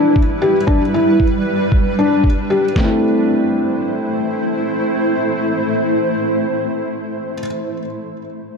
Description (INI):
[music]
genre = piano and strings electronica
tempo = 115 BPM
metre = 4/4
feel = straight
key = A minor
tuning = A4 = 439 Hz
[part]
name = granular cloud pad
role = sustained chords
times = 0.0-7.3 s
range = G3 to C5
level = -18 LUFS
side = equal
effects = built-in reverb, sidechain pumping
[part]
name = felt-muted upright piano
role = riff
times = 0.0-7.5 s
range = A3 to A4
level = -18 LUFS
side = left 1 dB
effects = ping-pong delay
[part]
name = shaker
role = drums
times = 0.0-2.7 s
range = none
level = barely audible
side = none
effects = none
[part]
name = lo-fi sampler-style drum kit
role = drums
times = 0.2-2.9 s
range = kick drum, snare drum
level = -16 LUFS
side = equal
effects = none
[sound]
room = moderate echo chamber reverb, RT60 2.5 s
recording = dark, warm production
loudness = -14 LUFS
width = side -5 dB against mid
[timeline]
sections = 0.0-2.8 A section; 2.8-6.9 B section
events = none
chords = 0.0 G6; 2.8 Am